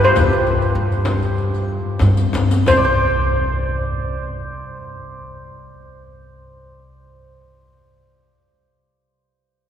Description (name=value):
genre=Persian modal ensemble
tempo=88-104 BPM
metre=4/4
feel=straight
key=unclear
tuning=A4 = 440 Hz
part: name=steel pan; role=melody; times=0.0-7.4 s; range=C5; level=-21 LUFS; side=left 2 dB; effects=none
part: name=santur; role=second line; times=0.0-7.6 s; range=F4 to D5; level=-23 LUFS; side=right 2 dB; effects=none
part: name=upright bass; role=bass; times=0.0-7.4 s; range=C2 to G2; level=-19 LUFS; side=left 1 dB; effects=none
part: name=frame drum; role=percussion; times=0.2-3.0 s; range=none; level=-28 LUFS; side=left 2 dB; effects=none
part: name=riq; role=percussion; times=0.2-3.0 s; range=none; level=-29 LUFS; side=left 3 dB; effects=none
part: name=tombak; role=percussion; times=0.2-3.0 s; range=none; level=-26 LUFS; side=left 1 dB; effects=none
room=wet cathedral reverb, RT60 4.4 s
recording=recorded in a church or concert hall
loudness=-15 LUFS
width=side -9 dB against mid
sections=0.0-2.7 A section; 2.7-8.1 B section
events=slowing down 0.0-2.7; drum fill 2.0-2.7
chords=none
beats=| 0.17 0.76 1.37 2.01 | 2.67 3.35 4.04 4.71 | 5.40 6.08 6.76 7.44